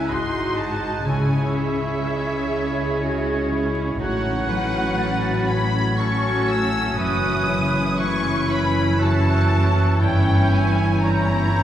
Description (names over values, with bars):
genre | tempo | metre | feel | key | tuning
classical | 60 BPM | 3/4 | rubato | unclear | A4 = 440 Hz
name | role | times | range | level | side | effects
rich symphonic violin section | melody | 0.0-11.6 s | E5 to E6 | -29 LUFS | left 2 dB | none
bright clarinet | second line | 0.0-11.6 s | C#4 to F#4 | -32 LUFS | left 2 dB | none
bright oboe | second line | 0.0-11.6 s | A4 to E5 | -32 LUFS | right 1 dB | none
mellow flute section | second line | 0.0-11.6 s | E6 to A6 | -30 LUFS | right 1 dB | none
warm symphonic violin section | second line | 0.0-11.6 s | E5 to E6 | -30 LUFS | left 1 dB | none
rich chamber viola section | accompaniment | 0.0-11.6 s | C#4 to G#4 | -27 LUFS | right 2 dB | none
mellow French horn section | sustained chords | 0.0-11.6 s | E3 to F#4 | -28 LUFS | left 2 dB | none
concert harp | arpeggios | 0.0-11.6 s | F#2 to D#5 | -28 LUFS | left 1 dB | none
clear symphonic cello section | bass | 0.0-11.6 s | F#2 to C#3 | -26 LUFS | right 1 dB | none
rich studio double bass section | bass | 0.0-11.6 s | F#1 to C#2 | -25 LUFS | right 1 dB | none
room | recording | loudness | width
wet church reverb, RT60 2.5 s | recorded in a church or concert hall, vinyl crackle | -18 LUFS | side -11 dB against mid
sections
0.0-11.6 A section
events
none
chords
0.1 G#7; 1.1 C#m; 4.0 F#m/A; 7.0 F#m7; 10.0 Gdim7